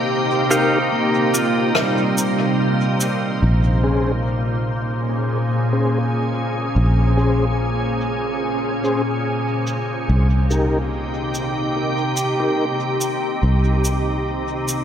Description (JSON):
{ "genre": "ambient dub", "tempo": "72 BPM", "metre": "4/4", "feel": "swing 54% on 16ths", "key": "Bb dorian", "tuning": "A4 = 438 Hz", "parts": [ { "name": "soft additive organ-like pad", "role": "sustained chords", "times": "0.0-14.8 s", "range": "Bb2 to C5", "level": "-20 LUFS", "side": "equal", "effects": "ensemble chorus, built-in reverb" }, { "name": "pedal steel guitar", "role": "arpeggios", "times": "0.5-3.4 s", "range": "G3 to G5", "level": "-23 LUFS", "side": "right 1 dB", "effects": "dub echo" }, { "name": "mellow tonewheel organ", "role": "stabs", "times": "0.5-12.7 s", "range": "Db4 to C5", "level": "-26 LUFS", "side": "left 1 dB", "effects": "chorus vibrato, low-pass filter, dub echo" }, { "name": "cabasa and rim click", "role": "drums", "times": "0.5-14.8 s", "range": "none", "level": "-24 LUFS", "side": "equal", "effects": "low-pass filter on snare, low-pass filter on perc, low-pass filter on room, dub echo" }, { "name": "fingered electric bass", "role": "bass", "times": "3.4-14.8 s", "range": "Bb1 to C2", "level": "-19 LUFS", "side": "equal", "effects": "none" } ], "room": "moderate echo chamber reverb, RT60 2.1 s", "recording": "none", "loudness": "-17 LUFS", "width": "side -9 dB against mid", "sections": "0.0-3.4 A section; 3.4-14.8 B section", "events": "filter sweep on drum 3.4-14.8", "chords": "0.0 Cm7; 3.4 Bbm9; 10.1 Cm7" }